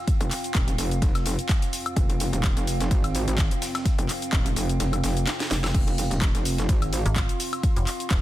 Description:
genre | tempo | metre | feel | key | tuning
bass house | 127 BPM | 4/4 | swing 55% on 16ths | unclear | A4 = 443 Hz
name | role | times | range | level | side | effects
dark analog pad | sustained chords | 0.0-8.2 s | F3 to Bb5 | -43 LUFS | right 1 dB | none
warbly tape-like pad | texture | 0.0-8.2 s | C4 to C6 | -33 LUFS | right 2 dB | chorus, built-in reverb, sidechain pumping
dusty soul sampler-style drum kit | drums | 0.1-8.2 s | ride cymbal, snare drum | -40 LUFS | right 4 dB | high-pass filter on cymbals, small room ambience, high-pass filter on snare
electronic kick drum | drums | 0.1-8.2 s | none | -23 LUFS | equal | overdrive, small room ambience
house drum kit | drums | 0.1-8.2 s | crash cymbal, handclaps, hi-hat, shaker, snare drum, woodblock | -30 LUFS | left 2 dB | overdrive, small room ambience
metallic wobble bass | bass | 0.2-7.0 s | Eb1 to Ab1 | -26 LUFS | equal | chorus, sidechain pumping
metallic FM bass | bass | 7.1-8.2 s | Eb1 to Ab1 | -25 LUFS | equal | overdrive, sidechain pumping
room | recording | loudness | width
digital ambience | dense, heavily limited modern master | -22 LUFS | side -14 dB against mid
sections
0.0-8.2 A section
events
kick drops out 4.8-5.7; drum fill 5.3-5.7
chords
0.0 F5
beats
| 0.08 0.55 1.02 1.49 | 1.97 2.44 2.91 3.38 | 3.85 4.33 4.80 5.27 | 5.75 6.22 6.69 7.16 | 7.63 8.11

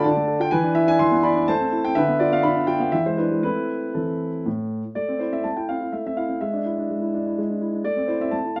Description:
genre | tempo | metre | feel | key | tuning
classical-period piano sonatina | 124 BPM | 3/4 | rubato | A minor | A4 = 440 Hz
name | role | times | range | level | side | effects
warm concert grand piano | solo | 0.0-8.6 s | A2 to C6 | -23 LUFS | equal | none
room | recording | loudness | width
light reverb | dark, warm production, nothing above 7.7 kHz | -23 LUFS | mono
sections
0.0-5.0 A section; 5.0-8.6 A section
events
none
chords
0.0 Dm; 0.5 E5; 1.5 Am; 2.0 Bdim/D; 2.9 E; 3.4 Am; 6.4 E7/G#; 7.9 Am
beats
0.04 | 0.52 1.00 1.48 | 1.96 2.45 2.94 | 3.44 3.95 4.46 | 4.96 5.45 5.93 | 6.41 6.90 7.38 | 7.85 8.33

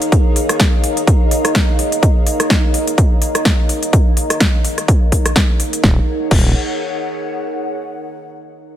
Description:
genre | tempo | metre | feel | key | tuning
bass house | 126 BPM | 4/4 | swing 56% on 16ths | Eb minor | A4 = 440 Hz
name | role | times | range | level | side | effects
deep dark ambient pad | sustained chords | 0.0-6.1 s | Eb4 to Bb5 | -22 LUFS | right 1 dB | chorus, built-in reverb, vintage 12-bit sampler grit, sidechain pumping
big-room dance drum kit | drums | 0.0-6.4 s | crash cymbal, hi-hat, rim click, snare drum | -18 LUFS | equal | overdrive
airy breathy pad | texture | 0.0-7.7 s | Ab4 to Gb5 | -27 LUFS | left 1 dB | chorus, sidechain pumping
electronic kick drum | drums | 0.1-6.4 s | none | -13 LUFS | equal | overdrive
growling FM bass | bass | 5.8-6.5 s | Eb1 | -18 LUFS | equal | overdrive, sidechain pumping
room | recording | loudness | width
digital ambience | none | -13 LUFS | side -11 dB against mid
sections
0.0-5.8 A section; 5.8-7.7 B section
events
fade-out on analog synth pad 0.0-5.8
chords
0.0 Ebsus2; 5.8 Ebmadd9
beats
| 0.12 0.60 1.07 1.55 | 2.03 2.50 2.98 3.46 | 3.93 4.41 4.88 5.36 | 5.84 6.31 6.79 7.26

